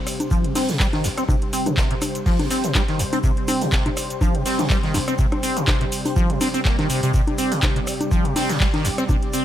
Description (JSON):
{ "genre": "acid house", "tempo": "123 BPM", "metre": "4/4", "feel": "swing 55% on 16ths", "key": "unclear", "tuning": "A4 = 440 Hz", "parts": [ { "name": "warm analog pad", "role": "sustained chords", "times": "0.0-9.4 s", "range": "C3 to D5", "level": "-28 LUFS", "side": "equal", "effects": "chorus, sidechain pumping" }, { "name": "booming analog drum machine", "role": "drums", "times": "0.1-9.4 s", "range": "congas, handclaps, hi-hat, rim click, shaker", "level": "-25 LUFS", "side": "left 1 dB", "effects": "none" }, { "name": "raw garage drum kit", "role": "drums", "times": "0.1-9.4 s", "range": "hi-hat, shaker, snare drum", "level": "-34 LUFS", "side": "right 1 dB", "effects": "high-pass filter on hats, high-pass filter on snare, high-pass filter on perc, high-pass filter on room" }, { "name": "acid bass, saw", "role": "riff", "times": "0.3-9.4 s", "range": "C2 to C4", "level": "-23 LUFS", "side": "equal", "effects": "overdrive, wide subtle chorus, sidechain pumping, ping-pong delay" }, { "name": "electronic kick drum", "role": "drums", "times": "0.3-9.2 s", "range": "none", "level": "-22 LUFS", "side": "equal", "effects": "overdrive" } ], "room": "small room ambience", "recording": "none", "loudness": "-18 LUFS", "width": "side -11 dB against mid", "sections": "0.0-9.4 A section", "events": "none", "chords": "0.0 C5" }